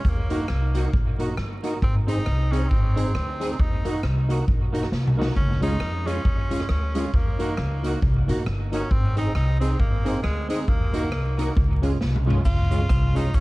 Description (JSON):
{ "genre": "ska", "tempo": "136 BPM", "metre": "4/4", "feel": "swing 59% on 8ths", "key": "Db major", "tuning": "A4 = 438 Hz", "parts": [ { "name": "edgy tenor saxophone", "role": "melody", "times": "0.0-13.4 s", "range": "Ab3 to F4", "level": "-33 LUFS", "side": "equal", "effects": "tape echo" }, { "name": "upright bass", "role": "bass", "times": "0.0-13.4 s", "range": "G1 to F2", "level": "-24 LUFS", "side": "equal", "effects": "none" }, { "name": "street-band drum kit", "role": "drums", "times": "0.0-13.4 s", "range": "crash cymbal, hi-hat, kick drum, rim click, snare drum, toms", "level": "-25 LUFS", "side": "equal", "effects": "none" }, { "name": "semi-hollow electric guitar", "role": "accompaniment", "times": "0.3-13.3 s", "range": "Ab3 to Ab4", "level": "-30 LUFS", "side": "right 3 dB", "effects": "ensemble chorus, tape echo" }, { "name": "tonewheel organ", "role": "stabs", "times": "0.3-13.3 s", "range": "Db4 to C5", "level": "-32 LUFS", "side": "left 4 dB", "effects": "overdrive, slow rotary speaker" }, { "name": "cabasa", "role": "percussion", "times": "12.4-13.4 s", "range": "none", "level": "-55 LUFS", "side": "left 3 dB", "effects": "none" } ], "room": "studio reverb", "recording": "dark, warm production, vinyl crackle", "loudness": "-20 LUFS", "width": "side -20 dB against mid", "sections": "0.0-12.5 A section", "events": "drum fill 4.9-5.4, 12.0-12.5", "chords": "0.1 Ebm; 1.8 Ab; 3.6 Ebm; 5.4 Db; 7.1 Ebm; 8.9 Ab; 10.7 Ebm; 11.6 Db", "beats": "| 0.05 0.49 0.94 1.38 | 1.82 2.27 2.71 3.15 | 3.60 4.04 4.48 4.92 | 5.37 5.81 6.25 6.70 | 7.14 7.58 8.03 8.47 | 8.91 9.35 9.80 10.24 | 10.68 11.13 11.57 12.01 | 12.46 12.90 13.34" }